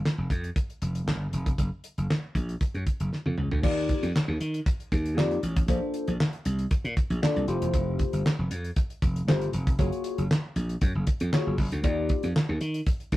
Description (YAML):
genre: early-eighties boogie funk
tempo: 117 BPM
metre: 4/4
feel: straight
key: Eb lydian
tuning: A4 = 440 Hz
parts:
  - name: damped 70s drum kit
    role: drums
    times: 0.1-13.2 s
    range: crash cymbal, handclaps, hi-hat, kick drum, snare drum, toms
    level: -26 LUFS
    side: equal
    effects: none
  - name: slap bass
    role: bass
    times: 0.2-13.2 s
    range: E1 to Eb3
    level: -28 LUFS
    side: equal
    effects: none
  - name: bell-like tine electric piano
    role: accompaniment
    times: 3.6-12.3 s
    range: A3 to D5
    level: -29 LUFS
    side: left 3 dB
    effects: phaser
room: light reverb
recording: rough rehearsal-room recording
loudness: -25 LUFS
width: side -16 dB against mid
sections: 0.0-3.6 A section; 3.6-13.2 B section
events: drum fill 3.1-3.6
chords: 0.0 N.C.; 1.6 Gb; 3.6 Ebmaj9; 5.7 Bbmaj9; 7.5 Fmaj9; 9.8 Gbmaj9; 11.8 Ebmaj9